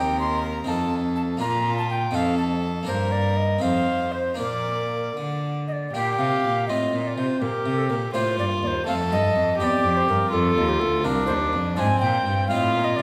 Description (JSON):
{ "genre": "classical, baroque-style sonata movement with continuo", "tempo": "82 BPM (dotted quarters)", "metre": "6/8", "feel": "straight", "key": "Bb major", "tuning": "A4 = 440 Hz", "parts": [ { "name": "mellow tenor recorder", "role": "melody", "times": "0.0-13.0 s", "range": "G4 to C6", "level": "-28 LUFS", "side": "equal", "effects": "none" }, { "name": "warm violin", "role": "second line", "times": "0.0-13.0 s", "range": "C4 to D5", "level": "-29 LUFS", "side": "equal", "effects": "none" }, { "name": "harpsichord", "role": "accompaniment", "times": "0.0-13.0 s", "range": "C2 to Bb4", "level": "-31 LUFS", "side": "equal", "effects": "none" }, { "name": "rich cello", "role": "bass", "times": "0.0-13.0 s", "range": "C2 to D3", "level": "-29 LUFS", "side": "equal", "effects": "none" } ], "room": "wet recital hall reverb, RT60 1.4 s", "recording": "none", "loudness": "-23 LUFS", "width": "mono", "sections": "0.0-5.9 A section; 5.9-13.0 B section", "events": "none", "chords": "0.0 Cm/Eb; 0.7 F7; 1.4 Bb; 2.1 F7; 2.9 Gm; 3.6 F7; 4.4 Bb; 6.7 F7/A; 7.4 Bb; 8.9 F; 9.6 C/E; 10.3 F5; 11.8 Fm/Ab; 12.5 F7/A", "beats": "0.68 | 1.41 2.15 | 2.88 3.63 | 4.39 5.17 | 5.94 6.68 | 7.41 8.14 | 8.87 9.60 | 10.33 11.06 | 11.78 12.51" }